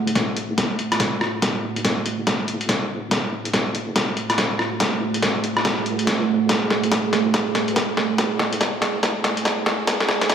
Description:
deep dubstep; 142 BPM; 4/4; swing 62% on 16ths, half-time; F# minor; A4 = 440 Hz
deep dark ambient pad; sustained chords; 0.0-10.3 s; A3 to G#5; -25 LUFS; right 4 dB; chorus, built-in reverb
deep soft wobble bass; bass; 0.0-10.3 s; F#1 to C#2; -32 LUFS; equal; chorus, tube saturation, high-pass filter
trip hop sampler-style drum kit; drums; 0.1-10.3 s; hi-hat, rim click, snare drum; -21 LUFS; left 1 dB; high-pass filter on hats, high-pass filter on snare, high-pass filter on room
electronic kick drum; drums; 0.2-10.3 s; -29 LUFS; equal; high-pass filter on kick
wet echo chamber reverb, RT60 2.4 s; played on a big sound system in a bare room, large studio reverb, high-pass filter; -19 LUFS; side -8 dB against mid
0.0-10.3 A section
build-up 0.0-10.3; drum fill 0.0-10.3; filter sweep on ambient pad 0.0-10.3
0.0 F#madd9

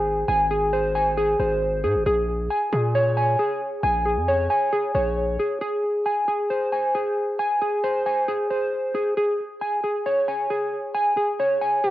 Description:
hip hop, trap; 135 BPM; 4/4; half-time; Ab major; A4 = 439 Hz
mellow electric guitar; arpeggios; 0.0-11.9 s; Ab4 to Ab5; -21 LUFS; equal; analog chorus, cassette tape, analog delay
distorted 808-style bass; bass; 0.0-5.4 s; Ab1 to Bb2; -26 LUFS; equal; distortion
moderate spring reverb, RT60 1.5 s; home recording on cassette, tape stop; -20 LUFS; side -14 dB against mid
0.0-5.6 A section; 5.6-11.9 B section
0.0 Ab; 2.1 Bbm7; 5.6 Ab; 9.2 Absus4

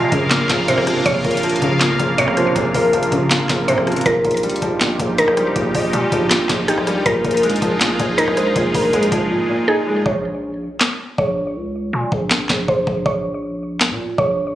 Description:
hip hop, trap; 160 BPM; 4/4; half-time; Bb dorian; A4 = 440 Hz
felt-muted upright piano; accompaniment; 0.0-10.1 s; Bb2 to Eb4; -20 LUFS; equal; low-pass filter
sweeping resonant pad; sustained chords; 0.0-10.0 s; Bb3 to F5; -23 LUFS; right 1 dB; chorus
mallet-like synth pluck; arpeggios; 0.0-14.6 s; G4 to Db5; -20 LUFS; right 1 dB; chorus, low-pass filter, ping-pong delay
growling 808-style bass; bass; 0.0-14.6 s; Ab1 to Bb2; -24 LUFS; right 1 dB
trap drum kit; drums; 0.1-14.3 s; handclaps, hi-hat, kick drum, rim click, snare drum; -20 LUFS; equal
gliding portamento lead; second line; 1.2-8.9 s; Bb4 to Eb5; -22 LUFS; left 1 dB; chorus, phaser, ping-pong delay
light reverb, digital ambience; recorded on a phone in the room, club reverb; -15 LUFS; side -13 dB against mid
0.0-10.1 A section; 10.1-14.6 B section
drums muted 9.3-10.1; break 10.1-14.6
0.0 Bbmadd9; 4.1 Ebadd9/Bb; 7.1 Fm7/Bb; 10.1 Bbmadd9

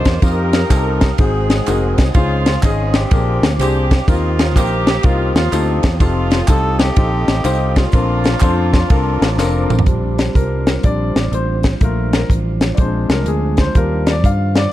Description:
uptempo gospel; 124 BPM; 4/4; swing 66% on 8ths; Bb major; A4 = 440 Hz
warm horn section; melody; 0.0-9.7 s; Ab3 to C5; -22 LUFS; equal
clear concert grand piano; accompaniment; 0.0-14.7 s; Ab2 to F5; -21 LUFS; left 4 dB
mellow tonewheel organ; sustained chords; 0.0-14.7 s; Eb3 to Eb6; -26 LUFS; right 5 dB; slow rotary speaker
fingered electric bass; bass; 0.1-14.7 s; F1 to G2; -18 LUFS; equal
tight funk drum kit; drums; 0.1-14.6 s; hi-hat, kick drum, ride cymbal, snare drum, toms; -15 LUFS; equal
tambourine and handclaps; percussion; 0.1-9.8 s; -32 LUFS; right 2 dB
studio reverb; dark, warm production; -13 LUFS; side -14 dB against mid
0.0-9.9 A section; 9.9-14.7 B section
drum fill 9.4-9.9; grand piano solo 9.9-14.7
0.2 F9sus4; 1.2 Ab7; 2.2 Dbmaj9; 3.1 Bb13; 4.1 Eb69; 6.0 F9; 7.9 Bbmaj9; 9.9 Bb69; 12.8 Bb7; 13.8 Ebmaj9

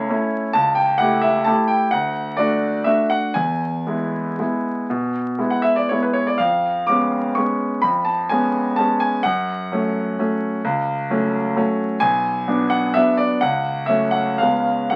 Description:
classical, piano waltz; 114-136 BPM; 3/4; rubato; F# minor from 6.4 s; A4 = 440 Hz
bright concert grand piano; solo; 0.0-15.0 s; B1 to D6; -20 LUFS; equal
moderate studio reverb, RT60 0.5 s; very old 78 rpm record, vinyl crackle; -20 LUFS; mono
0.0-15.0 A section
0.0 A/C#; 0.6 A7/C#; 1.9 D; 3.4 E; 6.4 C#7/E#; 9.3 F#m; 12.0 Bm; 13.4 F#m/C#; 14.4 C#7

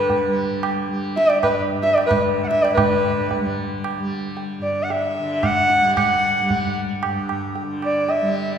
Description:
indian classical, Hindustani; 113 BPM; 3/4; straight; G raga yaman; A4 = 439 Hz
warm sarangi; melody; 0.0-8.6 s; B4 to F#5; -19 LUFS; equal
tanpura; drone; 0.0-8.6 s; G2 to G3; -27 LUFS; right 1 dB
tabla; percussion; 0.1-8.3 s; -25 LUFS; right 3 dB
wet concert hall reverb, RT60 2.2 s; recorded in a church or concert hall; -18 LUFS; side -8 dB against mid
0.0-2.8 A section; 2.8-8.6 B section

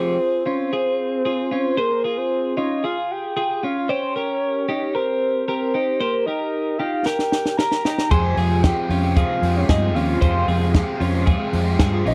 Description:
jangly indie pop; 114 BPM; 4/4; straight; F minor; A4 = 440 Hz
soft octave-layered synth lead; melody; 0.0-12.1 s; Bb4 to Bb5; -25 LUFS; equal; chorus, phaser, slapback echo
crunchy overdriven guitar; accompaniment; 0.0-0.2, 8.1-12.1 s; F2 to G4; -28 LUFS; equal; phaser
twelve-string electric guitar; arpeggios; 0.0-12.1 s; Db4 to C5; -27 LUFS; equal; slapback echo
compact cocktail drum kit; drums; 7.1-12.1 s; hi-hat, kick drum, snare drum; -22 LUFS; equal
lush unison pad; sustained chords; 8.1-12.1 s; F3 to F4; -34 LUFS; equal
fingered electric bass; bass; 8.1-12.1 s; Bb1 to G2; -23 LUFS; equal
little or no reverb; dry, close 1970s-style studio recording; -21 LUFS; mono
0.0-12.1 A section
drum fill 7.1-8.1
0.0 Fmadd9; 3.9 Eb; 8.1 Fmadd9

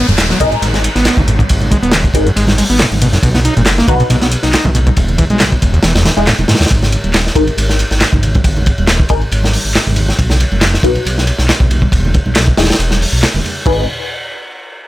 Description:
breakbeat, breaks; 138 BPM; 4/4; swing 54% on 16ths; G# minor; A4 = 440 Hz
screaming distorted acid line; riff; 0.0-6.7 s; D#2 to D#4; -14 LUFS; equal; distortion, chorus, ping-pong delay
downlifter; sound effects; 0.0-3.2 s; -24 LUFS; equal
detuned saw bass; bass; 0.1-13.9 s; D#1 to B1; -15 LUFS; equal; tube saturation
punchy analog drum machine; drums; 0.1-13.6 s; handclaps, hi-hat; -20 LUFS; equal; low-pass filter on hats, low-pass filter on cymbals, low-pass filter on snare
congas; percussion; 0.1-13.5 s; -22 LUFS; right 2 dB
crunchy breakbeat drum kit; drums; 0.2-13.8 s; crash cymbal, hi-hat, kick drum, ride cymbal, snare drum; -14 LUFS; equal
filtered dub chord stab; stabs; 0.4-13.8 s; D#4 to B4; -18 LUFS; left 3 dB; phaser, ensemble chorus, ping-pong delay
light reverb; -10 LUFS; side -16 dB against mid
0.0-13.7 A section; 13.7-14.9 B section
filter sweep on detuned saw bass 0.0-13.7; filter sweep on synth stab 0.0-13.7
0.0 G#sus2; 3.2 B; 5.0 E; 6.7 G#sus2; 10.2 B; 11.9 E5; 13.7 G#m

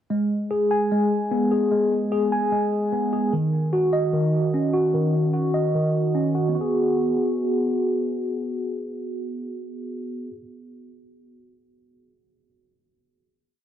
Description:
hip hop, trap; 149 BPM; 4/4; half-time; G# minor; A4 = 440 Hz
mellow tine electric piano; solo; 0.1-10.4 s; D#3 to G#5; -21 LUFS; equal; phaser, low-pass filter, tape echo
light reverb, digital ambience; dry, gritty hardware recording, transformer saturation, low-pass filter; -20 LUFS; side -10 dB against mid
0.1-6.5 breakdown; 6.5-9.8 final chord
filter sweep 0.1-6.5
0.1 G#m; 3.3 D#m7; 6.5 G#m7

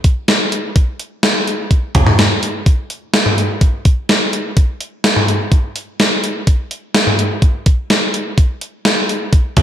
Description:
pop; 126 BPM; 4/4; straight
gated 80s digital drum machine; drums; 0.0-9.6 s; hi-hat, kick drum, snare drum, toms; -12 LUFS; equal; gated reverb, gated reverb snare
light reverb; -13 LUFS; side -10 dB against mid
0.0-9.6 A section

